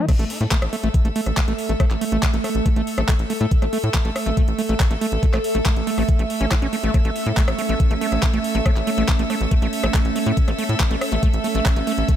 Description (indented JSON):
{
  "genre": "psychedelic trance",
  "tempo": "140 BPM",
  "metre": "4/4",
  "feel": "straight",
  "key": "A major",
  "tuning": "A4 = 440 Hz",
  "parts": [
    { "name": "overdriven acid bass", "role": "riff", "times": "0.0-12.1 s", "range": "A3 to E4", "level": "-27 LUFS", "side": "moving between left 4 dB and right 4 dB", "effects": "distortion, auto-pan, sidechain pumping, dub echo" },
    { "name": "evolving wavetable pad", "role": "sustained chords", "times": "0.7-12.2 s", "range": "A3 to A4", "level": "-26 LUFS", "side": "right 3 dB", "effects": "phaser, built-in reverb, sidechain pumping" },
    { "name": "electronic kick drum", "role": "drums", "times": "0.1-12.2 s", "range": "none", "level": "-18 LUFS", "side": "equal", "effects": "none" },
    { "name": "garage drum kit", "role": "drums", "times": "0.1-12.2 s", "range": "crash cymbal, handclaps, hi-hat, rim click", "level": "-27 LUFS", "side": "equal", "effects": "none" },
    { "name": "rich chamber string section", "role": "texture", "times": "0.1-12.2 s", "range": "A3 to E6", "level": "-28 LUFS", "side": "right 1 dB", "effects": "sidechain pumping" },
    { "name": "tight sequencer bass", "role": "bass", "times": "0.2-12.0 s", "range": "A1 to A2", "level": "-23 LUFS", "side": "equal", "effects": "none" }
  ],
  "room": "little or no reverb",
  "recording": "none",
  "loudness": "-18 LUFS",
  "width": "side -10 dB against mid",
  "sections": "0.1-12.2 A section",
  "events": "drop 0.1-12.2",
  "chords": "0.1 A5"
}